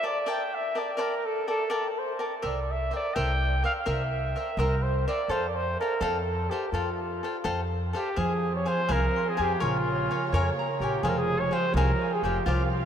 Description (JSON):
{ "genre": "mexican folk, mariachi", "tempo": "84 BPM (dotted quarters)", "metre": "6/8", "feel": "straight", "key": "F major, F minor from 8.2 s", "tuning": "A4 = 440 Hz", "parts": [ { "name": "mellow trumpet", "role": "melody", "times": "0.0-12.9 s", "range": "F4 to G5", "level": "-29 LUFS", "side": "right 1 dB", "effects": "none" }, { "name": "cavaquinho", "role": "accompaniment", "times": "0.0-12.6 s", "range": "F4 to A5", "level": "-32 LUFS", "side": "left 2 dB", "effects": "none" }, { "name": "upright bass", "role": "bass", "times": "2.4-12.9 s", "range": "F1 to F2", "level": "-29 LUFS", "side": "equal", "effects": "none" }, { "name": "dark chamber violin section", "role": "sustained chords", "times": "8.2-12.9 s", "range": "Ab3 to F5", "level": "-37 LUFS", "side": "right 1 dB", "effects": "none" }, { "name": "concert harp", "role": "arpeggios", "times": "8.2-12.9 s", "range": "Db3 to Ab6", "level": "-31 LUFS", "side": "right 2 dB", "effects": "none" } ], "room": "wet cathedral reverb, RT60 7.0 s", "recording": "in a vast, echoing space", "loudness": "-25 LUFS", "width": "side -8 dB against mid", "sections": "0.0-8.2 A section; 8.2-12.9 B section", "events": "none", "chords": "0.0 Gmadd9; 2.4 C7; 5.3 Fadd9; 8.2 Fm; 9.6 Bbm7; 11.0 Fmadd9" }